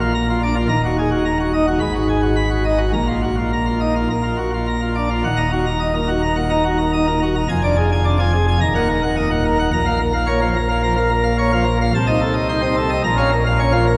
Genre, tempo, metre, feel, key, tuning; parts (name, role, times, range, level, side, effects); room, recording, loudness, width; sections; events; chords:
classical, organ toccata; 108 BPM; 4/4; straight; Eb minor; A4 = 441 Hz
pipe organ, plenum; solo; 0.0-14.0 s; Eb1 to Cb6; -18 LUFS; equal
wet church reverb, RT60 3.6 s; recorded in a church or concert hall; -18 LUFS; mono
0.0-5.3 A section; 5.3-14.0 B section
0.0 Bb; 0.7 Ebm; 1.8 Abm7; 2.9 Bbsus4; 4.1 Bb; 5.3 Ebm; 7.5 Ddim/F; 8.6 Ebm; 9.7 Bbm; 11.9 Adim/C; 13.0 Bbm